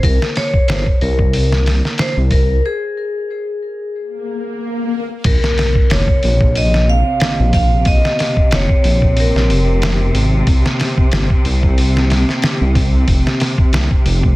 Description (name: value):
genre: trip hop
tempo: 92 BPM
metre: 4/4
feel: swing 55% on 16ths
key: Bb minor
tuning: A4 = 441 Hz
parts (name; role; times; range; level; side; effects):
- vibraphone with hard mallets; melody; 0.0-10.1 s; Ab4 to F5; -20 LUFS; left 1 dB; tape echo
- dark detuned saw bass; bass; 0.0-14.4 s; F1 to C2; -15 LUFS; equal; none
- trip hop sampler-style drum kit; drums; 0.0-14.4 s; crash cymbal, hi-hat, kick drum, snare drum; -15 LUFS; equal; studio reverb
- swell and impact; sound effects; 4.2-7.9 s; none; -21 LUFS; left 1 dB; none
- clear studio string section; sustained chords; 5.3-14.4 s; C3; -21 LUFS; equal; vintage 12-bit sampler grit
room: little or no reverb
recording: dense, heavily limited modern master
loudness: -12 LUFS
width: side -18 dB against mid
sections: 0.0-5.3 A section; 5.3-14.4 B section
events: break 2.6-5.3; swell 4.2-5.3; impact 5.3-7.9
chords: 0.0 C5; 2.6 N.C.; 5.3 Bbm; 10.5 C5; 13.1 F5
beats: | 0.04 0.69 1.34 1.99 | 2.64 3.30 3.95 4.60 | 5.25 5.91 6.56 7.21 | 7.86 8.51 9.17 9.82 | 10.47 11.12 11.77 12.43 | 13.08 13.73